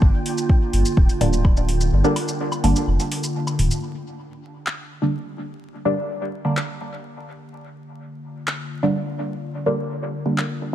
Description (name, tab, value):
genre	dub techno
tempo	126 BPM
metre	4/4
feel	straight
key	G minor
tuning	A4 = 440 Hz
part	warbly tape-like pad	sustained chords	0.0-10.7 s	D3 to G4	-29 LUFS	right 1 dB	chorus, built-in reverb, sidechain pumping
part	warm sub bass	bass	0.0-3.7 s	D1 to G1	-20 LUFS	equal	sidechain pumping
part	electronic kick drum	drums	0.0-1.5 s	none	-16 LUFS	equal	none
part	flickering grainy texture	texture	0.0-3.9 s	D4 to G5	-38 LUFS	left 1 dB	built-in reverb, sidechain pumping
part	deep house drum kit	drums	0.3-10.5 s	handclaps, hi-hat, shaker	-29 LUFS	left 1 dB	dub echo
part	filtered dub chord stab	stabs	1.2-10.4 s	D3 to D4	-24 LUFS	equal	chorus, phaser, sidechain pumping, dub echo
part	electronic toms and woodblock	percussion	1.2-3.7 s	none	-30 LUFS	left 1 dB	sidechain pumping on toms, sidechain pumping on perc, dub echo
room	light reverb, digital ambience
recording	dark, warm production, vinyl crackle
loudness	-19 LUFS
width	side -12 dB against mid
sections	0.0-3.8 A section; 3.8-10.7 B section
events	break 1.9-3.8; filter sweep on synth stab 3.8-10.7; filter sweep on ambient pad 3.8-10.7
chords	0.0 Gm